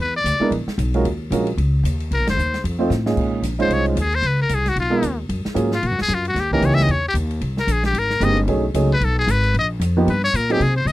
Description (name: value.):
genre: jazz, small-group swing and bop.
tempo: 226 BPM.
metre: 4/4.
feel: swing 59% on 8ths.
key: Bb minor.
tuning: A4 = 440 Hz.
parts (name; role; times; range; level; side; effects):
trumpet with metal mute; melody; 0.0-10.9 s; F4 to Fb5; -21 LUFS; left 2 dB; none.
upright bass; bass; 0.0-10.9 s; Gb1 to C3; -20 LUFS; equal; none.
open jazz drum kit; drums; 0.3-10.9 s; crash cymbal, hi-hat, kick drum, ride cymbal, snare drum, toms; -31 LUFS; equal; none.
warm baby grand piano; accompaniment; 0.4-10.6 s; Bb2 to C5; -20 LUFS; right 3 dB; none.
room: little or no reverb.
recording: dry, close 1970s-style studio recording.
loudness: -17 LUFS.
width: side -16 dB against mid.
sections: 0.0-3.2 A section; 3.2-10.9 B section.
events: band accent 2.2; drum fill 2.9; muted trumpet solo 3.2-10.9.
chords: 0.0 E7#11; 1.0 Ebm11; 2.1 Cm7b5; 2.6 F7; 3.2 Bbm11; 4.2 Db9; 5.3 Gbmaj9; 6.4 Eb7b9; 7.4 Abmaj9; 8.5 B13; 9.5 Bbsus4; 10.1 Gdim.